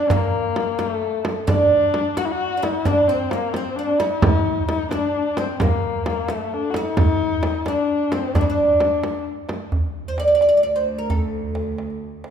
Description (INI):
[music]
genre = Persian modal ensemble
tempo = 87 BPM (dotted quarters)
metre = 6/8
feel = straight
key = D dastgah homayun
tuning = A4 = 440 Hz
[part]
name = dark kamancheh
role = second line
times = 0.0-9.2 s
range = A3 to F#4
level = -23 LUFS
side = left 6 dB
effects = none
[part]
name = oud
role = melody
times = 0.1-12.0 s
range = A3 to D5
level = -21 LUFS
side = right 2 dB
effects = none
[part]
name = frame drum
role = percussion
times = 0.1-9.6 s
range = none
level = -24 LUFS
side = right 2 dB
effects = none
[part]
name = tombak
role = percussion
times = 4.2-12.3 s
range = none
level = -25 LUFS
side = right 1 dB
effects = none
[part]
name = warm studio cello section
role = drone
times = 9.7-12.3 s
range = D2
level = -31 LUFS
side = right 4 dB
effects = none
[sound]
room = wet recital hall reverb, RT60 1.6 s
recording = minimal, uncompressed stereo recording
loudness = -18 LUFS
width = side -8 dB against mid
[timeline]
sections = 0.0-9.7 A section; 9.7-12.3 B section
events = none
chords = none